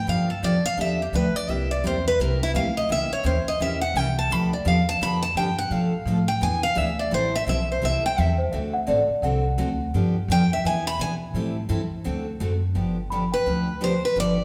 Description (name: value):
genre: acoustic string swing (jazz manouche)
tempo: 170 BPM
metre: 4/4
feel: swing 60% on 8ths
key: G mixolydian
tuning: A4 = 440 Hz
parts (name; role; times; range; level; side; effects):
- picked steel-string acoustic guitar; melody; 0.0-11.1, 13.3-14.4 s; E4 to B5; -27 LUFS; equal; none
- upright bass; bass; 0.0-14.4 s; G1 to B2; -29 LUFS; equal; none
- picked steel-string acoustic guitar; accompaniment; 0.1-14.4 s; B2 to A4; -29 LUFS; equal; none
- celesta; second line; 8.4-9.9, 13.1-14.0 s; C5 to B5; -29 LUFS; equal; none
room: wet large studio reverb, RT60 1.4 s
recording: band playing live in one room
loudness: -24 LUFS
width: mono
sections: 0.0-12.8 A section; 12.8-14.4 B section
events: steel-string acoustic guitar solo 0.0-12.8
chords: 0.0 G7; 1.5 C7; 2.9 C#dim7; 4.3 G7; 5.7 Bm7b5; 6.4 E7; 7.1 Am7; 8.5 D7; 9.9 G7; 10.6 E7; 11.3 Am7; 12.1 D7; 12.8 G7